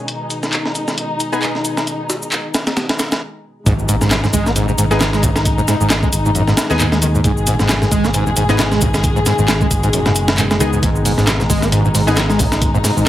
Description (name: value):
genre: breakbeat, breaks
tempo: 134 BPM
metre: 4/4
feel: swing 56% on 16ths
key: G# minor pentatonic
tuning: A4 = 440 Hz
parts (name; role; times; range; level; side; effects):
- dark symphonic string section; sustained chords; 0.0-13.1 s; B2 to G#4; -21 LUFS; left 2 dB; vintage 12-bit sampler grit, sidechain pumping
- breakbeat sampler-style drum kit; drums; 0.1-13.0 s; hi-hat, kick drum, snare drum; -18 LUFS; equal; high-pass filter on hats, small room ambience, high-pass filter on snare, high-pass filter on kick
- punchy analog drum machine; drums; 0.1-13.0 s; handclaps, hi-hat, shaker; -23 LUFS; equal; small room ambience
- orchestra-hit-like synth stab; stabs; 1.3-1.5, 4.9-12.3 s; B3 to G#4; -22 LUFS; left 1 dB; built-in reverb, dub echo
- overdriven acid bass; riff; 3.7-13.0 s; F#2 to B3; -18 LUFS; equal; distortion, ensemble chorus, dub echo
- fingered electric bass; bass; 3.7-13.1 s; F#1 to D#2; -19 LUFS; equal; none
- impact; sound effects; 3.7-5.5 s; none; -27 LUFS; equal; none
room: light reverb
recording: heavily compressed radio sound, low-pass filter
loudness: -13 LUFS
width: side -13 dB against mid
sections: 0.0-3.7 A section; 3.7-13.1 B section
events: filter sweep on string section 0.0-3.7; stop 3.2-3.7; drop 3.7-13.1; impact 3.7-5.5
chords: 0.0 G#m